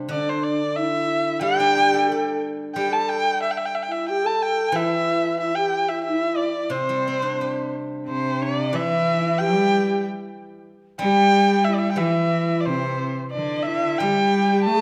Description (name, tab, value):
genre	chinese traditional, Chinese chamber ensemble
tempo	91 BPM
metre	2/4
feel	rubato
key	unclear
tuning	A4 = 445 Hz
part	steel-string zither	accompaniment	0.0-14.8 s	C3 to D5	-32 LUFS	equal	none
part	dark erhu	melody	0.1-14.8 s	C5 to A5	-24 LUFS	equal	none
part	breathy mellow low xiao	second line	0.1-14.8 s	C4 to A4	-28 LUFS	equal	none
part	bright cello	second line	8.1-14.8 s	C3 to A3	-26 LUFS	equal	none
room	moderate concert hall reverb, RT60 2.1 s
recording	none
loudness	-22 LUFS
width	mono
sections	0.0-8.1 A section; 8.1-14.8 B section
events	none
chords	none